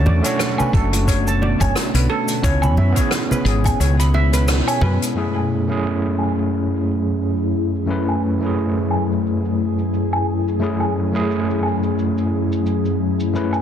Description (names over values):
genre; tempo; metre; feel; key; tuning
sunset chillout; 88 BPM; 4/4; swing 56% on 16ths; F# minor; A4 = 440 Hz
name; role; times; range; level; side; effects
overdriven tine electric piano; accompaniment; 0.0-13.6 s; F#2 to C#5; -20 LUFS; right 1 dB; medium tremolo, auto-pan, digital delay
ethereal airy pad; sustained chords; 0.2-13.6 s; B2 to G#4; -24 LUFS; left 3 dB; ensemble chorus, built-in reverb, phaser
steel pan; arpeggios; 0.0-4.9 s; G#4 to B5; -26 LUFS; right 1 dB; digital delay
woody fretless electric bass; bass; 0.0-5.0 s; F#1 to F#2; -17 LUFS; equal; none
bongos and congas; percussion; 0.1-5.0 s; none; -25 LUFS; right 1 dB; none
vintage brush drum kit; drums; 0.2-13.6 s; cabasa, hi-hat, rim click, woodblock; -24 LUFS; equal; low-pass filter on hats, soft clipping on snare, low-pass filter on snare, low-pass filter on perc, low-pass filter on room
electronic kick drum; drums; 0.7-3.8 s; none; -19 LUFS; equal; none
room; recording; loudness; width
light reverb, studio reverb; dense, heavily limited modern master; -17 LUFS; side -9 dB against mid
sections
0.0-5.2 A section; 5.2-13.6 B section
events
kick drops out 3.8-5.2; band accent 4.5-4.8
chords
0.0 Bm9; 2.4 C#m7; 5.2 F#m9